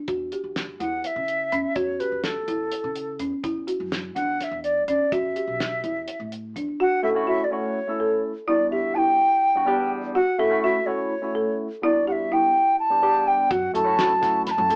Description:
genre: progressive instrumental, band music in an uneven meter.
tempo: 250 BPM (eighths).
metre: 7/8.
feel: straight.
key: unclear.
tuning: A4 = 440 Hz.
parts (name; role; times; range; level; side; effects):
folk marimba with medium mallets; arpeggios; 0.0-14.8 s; C#4 to A4; -26 LUFS; equal; none.
upright bass; bass; 0.1-6.7, 13.5-14.8 s; B1 to F#3; -38 LUFS; equal; none.
damped 70s drum kit; drums; 0.1-6.7, 13.5-14.8 s; hi-hat, kick drum, snare drum; -31 LUFS; equal; none.
wooden flute; melody; 0.8-14.8 s; A4 to B5; -22 LUFS; equal; none.
barky tine electric piano; accompaniment; 7.0-14.8 s; E2 to A4; -28 LUFS; equal; overdrive, phaser.
room: moderate studio reverb, RT60 0.5 s.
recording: band playing live in one room, small speaker sound.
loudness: -20 LUFS.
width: side -35 dB against mid.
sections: 0.0-6.8 A section; 6.8-14.8 B section.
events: none.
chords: 0.1 A7/E; 3.4 Dadd9/E; 5.1 Em; 6.8 F#m7; 8.5 Em7; 10.2 F#m7; 11.8 Em7; 13.5 F#m7.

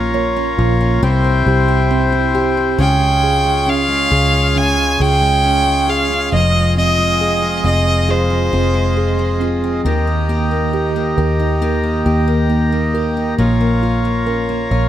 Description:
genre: pop ballad.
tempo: 68 BPM.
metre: 4/4.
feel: straight.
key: unclear.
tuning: A4 = 440 Hz.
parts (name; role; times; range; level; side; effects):
mellow tine electric piano; accompaniment; 0.0-14.9 s; Eb3 to Db5; -20 LUFS; right 3 dB; medium stereo tremolo.
hand-pumped harmonium; sustained chords; 0.0-14.9 s; E4 to Bb5; -21 LUFS; left 1 dB; none.
picked steel-string acoustic guitar; arpeggios; 0.0-14.9 s; F2 to G4; -24 LUFS; left 7 dB; none.
vintage muted fingered electric bass; bass; 0.0-14.9 s; F1 to Eb2; -17 LUFS; equal; none.
warm violin; melody; 2.8-9.4 s; C5 to Ab5; -16 LUFS; right 1 dB; none.
room: light reverb, small room ambience.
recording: none.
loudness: -13 LUFS.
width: side -11 dB against mid.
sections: 0.0-2.8 A section; 2.8-14.9 B section.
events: none.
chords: 0.0 Bbm; 1.0 C; 2.8 Db; 6.3 Fm7; 9.9 Eb; 13.4 Bbm.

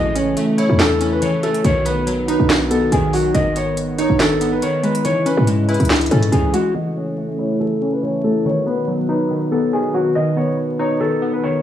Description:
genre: hip hop, trap.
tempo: 141 BPM.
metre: 4/4.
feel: half-time.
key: unclear.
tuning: A4 = 437 Hz.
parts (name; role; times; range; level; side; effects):
warm concert grand piano; melody; 0.0-11.6 s; F#4 to D#5; -21 LUFS; left 2 dB; low-pass filter, analog delay.
glassy digital keys; accompaniment; 0.0-11.6 s; D#3 to E4; -20 LUFS; right 1 dB; chorus, low-pass filter.
dark French horn section; sustained chords; 0.0-11.6 s; B2 to B4; -26 LUFS; equal; low-pass filter.
short 808-style bass; bass; 0.0-6.5 s; G#1 to G#2; -20 LUFS; equal; none.
trap drum kit; drums; 0.2-6.6 s; handclaps, hi-hat, snare drum; -21 LUFS; right 1 dB; none.
room: light reverb, small room ambience.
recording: dry, gritty hardware recording, transformer saturation, vinyl crackle, studio ambience.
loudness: -15 LUFS.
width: side -10 dB against mid.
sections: 0.0-6.8 A section; 6.8-11.6 B section.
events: filter sweep 6.8-11.6.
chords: 0.0 A; 1.6 B; 3.3 G#m; 5.0 C#m; 6.8 A; 8.5 B; 10.2 G#m (rootless).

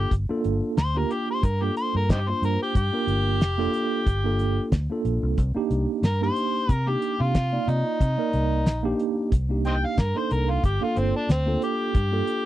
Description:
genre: straight-eighth soul blues.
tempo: 91 BPM.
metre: 4/4.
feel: swing 56% on 16ths.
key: G minor.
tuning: A4 = 440 Hz.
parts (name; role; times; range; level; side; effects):
overdriven harmonica; melody; 0.0-12.5 s; C4 to G5; -27 LUFS; left 1 dB; none.
mellow tine electric piano; accompaniment; 0.0-12.5 s; Bb3 to D5; -27 LUFS; right 3 dB; medium stereo tremolo.
vintage muted fingered electric bass; bass; 0.0-12.2 s; F1 to C3; -25 LUFS; equal; none.
cloth-damped thuddy drum kit; drums; 0.1-12.4 s; hi-hat, kick drum, snare drum; -22 LUFS; equal; none.
room: little or no reverb.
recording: dry, close 1970s-style studio recording.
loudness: -22 LUFS.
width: side -14 dB against mid.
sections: 0.0-12.5 A section.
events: harmonica solo 0.0-12.5.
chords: 0.0 Gm7; 5.4 Cm7; 10.6 Gm7.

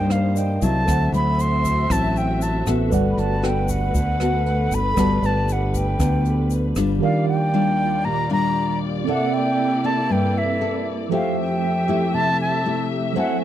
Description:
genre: bossa nova.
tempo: 117 BPM.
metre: 4/4.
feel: straight.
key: G major.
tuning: A4 = 440 Hz.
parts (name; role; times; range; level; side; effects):
concert flute; melody; 0.0-13.4 s; E5 to C6; -24 LUFS; equal; none.
mellow tine electric piano; accompaniment; 0.0-13.4 s; Eb3 to A5; -27 LUFS; right 6 dB; medium stereo tremolo.
nylon-string guitar; accompaniment; 0.0-13.4 s; G2 to A4; -23 LUFS; left 2 dB; none.
muted studio string section; sustained chords; 0.0-13.4 s; Eb2 to E5; -29 LUFS; left 1 dB; none.
fingered electric bass; bass; 0.0-7.0 s; G1 to G2; -22 LUFS; equal; none.
jazz brush drum kit; drums; 0.1-6.9 s; hi-hat, kick drum, rim click; -28 LUFS; equal; none.
tube shaker; percussion; 0.1-7.0 s; none; -38 LUFS; left 17 dB; none.
room: little or no reverb.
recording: dry, close 1970s-style studio recording.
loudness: -18 LUFS.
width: side -12 dB against mid.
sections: 0.0-7.0 A section; 7.0-13.4 B section.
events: none.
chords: 0.0 Cm7; 0.9 D9; 2.9 Gmaj9; 7.0 Ebmaj9; 9.1 C13; 11.1 Fmaj9.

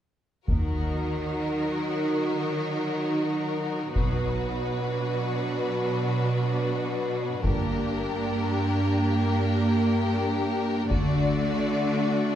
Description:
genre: cinematic, epic orchestral film score.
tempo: free time.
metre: none.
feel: none.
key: Eb harmonic minor.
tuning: A4 = 438 Hz.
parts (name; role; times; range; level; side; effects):
warm symphonic violin section; second line; 0.5-12.4 s; Gb4 to D5; -30 LUFS; left 3 dB; none.
warm symphonic viola section; accompaniment; 0.5-12.4 s; Gb3 to Eb4; -28 LUFS; right 1 dB; none.
clear symphonic cello section; bass; 0.5-12.4 s; G2 to Eb3; -29 LUFS; right 2 dB; none.
rich symphonic double bass section; bass; 0.5-1.0, 4.0-4.5, 7.4-8.0, 10.9-11.5 s; G1 to Eb2; -31 LUFS; equal; none.
solo taiko drums; drums; 0.5-12.0 s; none; -29 LUFS; left 1 dB; none.
room: moderate scoring stage reverb, RT60 2.0 s.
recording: heard from further back in the room.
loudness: -24 LUFS.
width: side -10 dB against mid.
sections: 0.5-12.4 A section.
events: build-up 0.5-12.4.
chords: 0.5 Ebm; 4.0 Bm; 7.4 Gm; 10.9 D.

